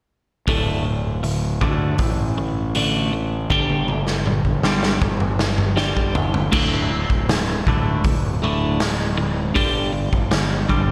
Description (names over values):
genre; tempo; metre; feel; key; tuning
quiet-loud alternative rock; 79 BPM; 4/4; straight; unclear; A4 = 440 Hz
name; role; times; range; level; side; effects
twelve-string electric guitar; arpeggios; 0.5-10.9 s; D2 to G3; -25 LUFS; equal; phaser, slapback echo
fuzz fingered electric bass; bass; 0.5-10.9 s; D1 to D2; -26 LUFS; equal; overdrive
raw garage drum kit; drums; 0.5-10.9 s; crash cymbal, hi-hat, kick drum, snare drum, toms; -24 LUFS; equal; none
room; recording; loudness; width
moderate concert hall reverb, RT60 1.9 s, small room ambience; big arena sound; -20 LUFS; mono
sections
0.5-6.5 A section; 6.5-10.9 B section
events
drum fill 3.5-6.5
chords
0.5 D5; 3.5 G5; 6.5 D5; 9.6 G5